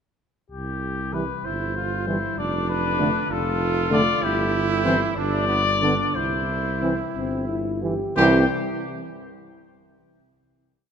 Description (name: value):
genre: classical, brass quintet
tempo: 59-65 BPM (dotted quarters)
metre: 6/8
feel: straight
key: C major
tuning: A4 = 441 Hz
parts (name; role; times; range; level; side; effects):
- clear trumpet; melody; 0.5-8.5 s; G4 to D5; -25 LUFS; left 6 dB; none
- mellow bass trombone; bass; 0.5-8.5 s; F1 to C2; -26 LUFS; right 2 dB; none
- dark French horn; accompaniment; 1.1-8.5 s; G3 to G4; -29 LUFS; left 3 dB; none
- warm trombone; accompaniment; 1.1-8.4 s; D3 to E3; -30 LUFS; right 3 dB; none
- clear trumpet; second line; 1.4-8.5 s; B3 to G4; -28 LUFS; right 6 dB; none
room: wet concert hall reverb, RT60 2.4 s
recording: none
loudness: -20 LUFS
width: side -7 dB against mid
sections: 0.5-8.2 A section; 8.2-10.1 final chord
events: slowing down 3.3-8.2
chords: 0.5 C; 2.4 Dm/F; 4.2 C/G (rootless); 5.2 G5; 6.2 C